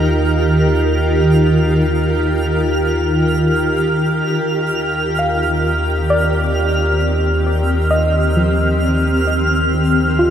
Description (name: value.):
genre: ambient.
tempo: 66 BPM.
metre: 4/4.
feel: straight.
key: unclear.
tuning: A4 = 440 Hz.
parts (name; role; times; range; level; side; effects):
granular cloud pad; sustained chords; 0.0-10.3 s; Eb3 to Bb4; -16 LUFS; equal; built-in reverb, shimmer reverb.
soft round pluck; arpeggios; 0.0-10.3 s; F3 to F5; -21 LUFS; equal; chorus, tape echo, shimmer reverb.
warm sub bass; bass; 0.0-10.3 s; Eb2; -19 LUFS; equal; none.
analog drone; drone; 0.0-10.3 s; Eb3 to Eb4; -32 LUFS; equal; none.
twinkling granular texture; texture; 0.0-10.3 s; F6; -22 LUFS; right 1 dB; built-in reverb, shimmer reverb.
room: wet cathedral reverb, RT60 6.2 s.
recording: in a vast, echoing space.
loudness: -14 LUFS.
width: side -9 dB against mid.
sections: 0.0-10.3 A section.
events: none.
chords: 0.0 Ebadd9; 4.3 Cm7/Eb.